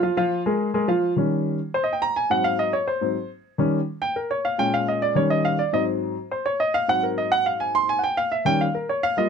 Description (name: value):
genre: jazz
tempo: 210 BPM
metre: 4/4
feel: straight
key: unclear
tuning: A4 = 443 Hz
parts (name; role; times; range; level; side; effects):
- warm baby grand piano; solo; 0.0-9.3 s; Ab2 to C6; -20 LUFS; equal; none
room: light reverb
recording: close, detailed microphones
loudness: -20 LUFS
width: side -6 dB against mid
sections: 0.0-1.2 A section; 1.2-9.3 B section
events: grand piano solo 1.2-9.3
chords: 0.0 Bb5; 1.2 Eb7; 2.3 Ab7; 3.5 Eb7; 4.6 Bbm7; 5.2 Eb7; 5.7 Ab7; 8.0 Eb7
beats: | 0.03 0.31 0.60 0.88 | 1.17 1.45 1.74 2.02 | 2.31 2.60 2.88 3.17 | 3.45 3.74 4.03 4.31 | 4.60 4.88 5.17 5.46 | 5.74 6.03 6.31 6.60 | 6.89 7.17 7.46 7.74 | 8.03 8.32 8.60 8.89 | 9.17